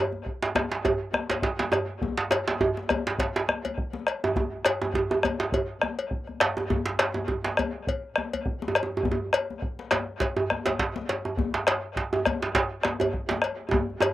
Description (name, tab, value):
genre	west african traditional, West African drum ensemble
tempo	102 BPM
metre	4/4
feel	swing 54% on 16ths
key	none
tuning	none
part	djembe	percussion	0.1-14.1 s	none	-34 LUFS	left 4 dB	slapback echo
part	bombo	percussion	0.3-14.1 s	none	-28 LUFS	left 1 dB	none
part	djembe	percussion	0.4-14.1 s	none	-26 LUFS	right 3 dB	slapback echo
part	cowbell	percussion	0.9-14.1 s	none	-30 LUFS	left 4 dB	slapback echo
room	little or no reverb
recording	recorded outdoors, with no room sound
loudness	-24 LUFS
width	side -14 dB against mid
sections	0.0-14.1 A section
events	drum fill 6.3-6.7, 13.7-14.1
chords	none